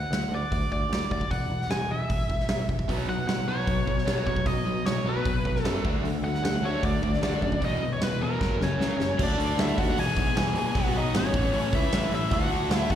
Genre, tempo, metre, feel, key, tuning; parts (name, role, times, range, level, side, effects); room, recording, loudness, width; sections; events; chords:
hard rock; 152 BPM; 4/4; straight; A4 = 440 Hz
biting lead guitar; melody; 0.0-13.0 s; A#4 to G#5; -30 LUFS; equal; overdrive, plate reverb, slapback echo, tape echo
picked electric bass; bass; 0.0-13.0 s; E1 to F#2; -30 LUFS; equal
huge arena drum kit; drums; 0.1-13.0 s; crash cymbal, hi-hat, kick drum, snare drum; -29 LUFS; equal
distorted electric guitar; riff; 2.9-13.0 s; E2 to D4; -33 LUFS; left 10 dB; distortion, slapback echo
tight distorted guitar; riff; 2.9-9.2 s; E2 to D4; -32 LUFS; right 9 dB; distortion, slapback echo
fuzz lead guitar; second line; 8.6-13.0 s; C#4 to G#4; -33 LUFS; equal; distortion, plate reverb, slapback echo
lush unison pad; sustained chords; 9.2-13.0 s; E3 to E5; -40 LUFS; left 1 dB
tight distorted guitar; riff; 9.2-13.0 s; E2 to D4; -34 LUFS; right 3 dB; distortion, slapback echo
light reverb; live gig heard through the venue's PA, recital hall reverb; -24 LUFS; side -10 dB against mid
0.0-9.2 A section; 9.2-13.0 B section
drum fill 8.4-9.2
0.0 D; 1.3 E5; 2.9 Bsus2; 5.8 D; 7.6 E5; 8.4 F#; 9.2 D5; 10.0 E; 10.8 B5; 11.3 A; 12.3 D